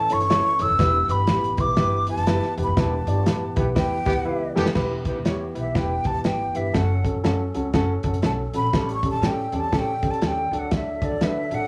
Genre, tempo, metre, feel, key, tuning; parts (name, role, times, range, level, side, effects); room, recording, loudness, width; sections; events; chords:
uptempo 1960s-style soul; 121 BPM; 4/4; swing 61% on 8ths; E dorian; A4 = 440 Hz
breathy hollow jazz flute; melody; 0.0-11.7 s; D5 to E6; -27 LUFS; equal
percussive tonewheel organ; sustained chords; 0.0-11.7 s; E3 to A4; -36 LUFS; equal; slow rotary speaker
upright bass; bass; 0.0-11.7 s; E1 to D3; -29 LUFS; equal
dark upright piano; accompaniment; 0.1-11.6 s; C#4 to D5; -30 LUFS; equal
warm soul drum kit; drums; 0.1-11.6 s; crash cymbal, hi-hat, kick drum, snare drum; -27 LUFS; equal
warm horn section; second line; 3.6-4.7 s; E3 to G4; -30 LUFS; equal; analog delay
moderate large studio reverb, RT60 0.8 s, small room ambience; -23 LUFS; mono
0.0-4.8 A section; 4.8-11.7 B section
band accent 2.8-4.8; drum fill 4.3-4.8; flute solo 4.8-11.7
0.0 A; 0.8 Em; 6.7 F#m; 8.7 A7; 10.5 D